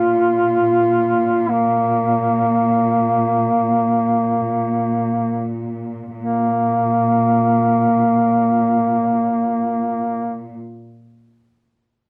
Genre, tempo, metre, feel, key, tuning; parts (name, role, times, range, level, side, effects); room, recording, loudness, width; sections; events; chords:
caucasian folk, Caucasian lament; free time; A4 = 439 Hz
warm duduk; melody; 0.0-10.5 s; Bb3 to F4; -18 LUFS; equal
muted studio string section; drone; 0.0-10.5 s; Bb2; -26 LUFS; equal
moderate booth ambience, RT60 0.2 s; dry, close 1970s-style studio recording; -18 LUFS; mono
0.0-6.2 A section; 6.2-11.2 B section
slowing down 0.0-6.2